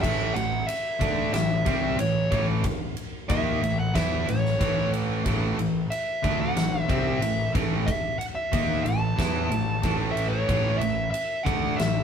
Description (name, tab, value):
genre	hard rock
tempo	92 BPM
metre	4/4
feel	straight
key	unclear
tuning	A4 = 441 Hz
part	dark smooth lead guitar	melody	0.0-12.0 s	C#5 to A5	-28 LUFS	equal	overdrive
part	crunchy overdriven guitar	riff	0.0-12.0 s	A2 to E4	-29 LUFS	right 5 dB	none
part	overdriven electric guitar	riff	0.0-12.0 s	A2 to E4	-32 LUFS	left 7 dB	none
part	fuzz picked electric bass	bass	0.0-12.0 s	A1 to E2	-29 LUFS	equal	overdrive
part	huge arena drum kit	drums	0.0-11.9 s	crash cymbal, kick drum, ride cymbal, snare drum	-29 LUFS	equal	none
room	light reverb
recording	band playing live in one room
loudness	-23 LUFS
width	side -7 dB against mid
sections	0.0-12.0 A section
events	none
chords	0.0 A5